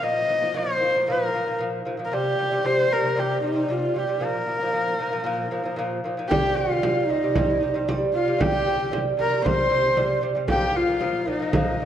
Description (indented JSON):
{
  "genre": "mongolian traditional, Mongolian folk",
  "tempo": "115 BPM",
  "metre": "4/4",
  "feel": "straight",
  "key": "unclear",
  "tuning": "A4 = 440 Hz",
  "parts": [
    { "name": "rich horsehead fiddle", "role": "melody", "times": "0.0-11.9 s", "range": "Eb4 to Eb5", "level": "-24 LUFS", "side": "left 1 dB", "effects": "none" },
    { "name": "lute", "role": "arpeggios", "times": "0.0-11.9 s", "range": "Bb2 to G3", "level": "-25 LUFS", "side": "right 2 dB", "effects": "none" },
    { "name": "bright reedy large dizi", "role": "second line", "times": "6.3-11.9 s", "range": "Eb5 to C6", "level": "-29 LUFS", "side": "left 3 dB", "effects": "none" },
    { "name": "frame drum", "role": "percussion", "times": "6.3-11.7 s", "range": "none", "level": "-27 LUFS", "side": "right 1 dB", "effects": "none" }
  ],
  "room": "wet recital hall reverb, RT60 1.7 s",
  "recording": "dark, warm production",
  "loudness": "-21 LUFS",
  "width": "side -10 dB against mid",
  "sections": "0.0-6.3 A section; 6.3-11.9 B section",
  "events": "none",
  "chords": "0.0 Bb5; 2.1 C5; 4.2 Bb5; 6.3 C5; 10.5 Bb5",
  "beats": "| 0.02 0.55 1.07 1.60 | 2.12 2.64 3.17 3.69 | 4.21 4.74 5.26 5.78 | 6.31 6.83 7.35 7.87 | 8.40 8.92 9.44 9.96 | 10.49 11.01 11.53"
}